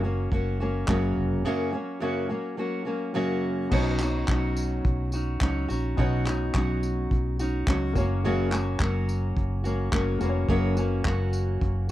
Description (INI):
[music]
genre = acoustic pop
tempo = 106 BPM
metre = 4/4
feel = swing 55% on 16ths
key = F# major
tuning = A4 = 440 Hz
[part]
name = fingerpicked steel-string acoustic guitar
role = accompaniment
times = 0.0-11.9 s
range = F#2 to F#4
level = -27 LUFS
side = equal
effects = none
[part]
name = vintage muted fingered electric bass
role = bass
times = 0.0-11.9 s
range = E#1 to C#2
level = -28 LUFS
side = equal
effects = none
[part]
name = cloth-damped thuddy drum kit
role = drums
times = 0.3-11.9 s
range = crash cymbal, handclaps, kick drum, tambourine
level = -28 LUFS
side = equal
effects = none
[part]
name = warm concert grand piano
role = accompaniment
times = 3.7-11.9 s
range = A#3 to C#5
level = -36 LUFS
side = left 5 dB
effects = none
[sound]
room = little or no reverb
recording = dark, warm production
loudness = -24 LUFS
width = side -14 dB against mid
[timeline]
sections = 0.0-3.7 A section; 3.7-11.9 B section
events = break 1.5-3.7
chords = 0.0 F#; 3.7 Badd9; 8.0 F#